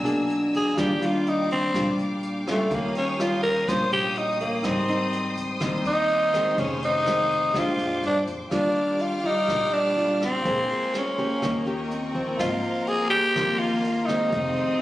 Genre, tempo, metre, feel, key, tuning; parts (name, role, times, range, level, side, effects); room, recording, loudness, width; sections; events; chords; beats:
bossa nova; 124 BPM; 4/4; straight; Eb major; A4 = 438 Hz
nylon-string guitar; accompaniment; 0.0-14.8 s; F2 to C5; -28 LUFS; left 1 dB
warm grand piano; accompaniment; 0.0-14.8 s; B3 to Db6; -37 LUFS; right 2 dB
warm studio string section; sustained chords; 0.0-14.8 s; D4 to F6; -33 LUFS; left 2 dB
upright bass; bass; 0.0-14.5 s; F1 to G2; -34 LUFS; equal
jazz brush drum kit; drums; 0.1-14.7 s; hi-hat, kick drum, rim click; -36 LUFS; equal
growling tenor saxophone; melody; 0.6-14.8 s; A3 to C5; -23 LUFS; equal
rich viola; second line; 8.5-14.8 s; G3 to C4; -31 LUFS; left 2 dB
moderate large studio reverb, RT60 1.2 s; recorded on a phone in the room, studio reverb; -22 LUFS; side -15 dB against mid
0.0-8.5 A section; 8.5-14.8 B section
tenor saxophone solo 0.0-8.5
0.0 E7#11; 0.8 Ebmaj9; 2.7 Eb9; 4.6 Abmaj7; 6.6 Fm7; 7.5 Bb13; 8.5 Ebmaj9; 10.4 Bbm9; 11.4 Eb7; 12.4 Ab69
0.29 | 0.78 1.26 1.74 2.23 | 2.71 3.19 3.68 4.16 | 4.64 5.13 5.61 6.09 | 6.58 7.06 7.54 8.03 | 8.51 9.00 9.48 9.96 | 10.45 10.93 11.42 11.90 | 12.38 12.87 13.35 13.84 | 14.32 14.80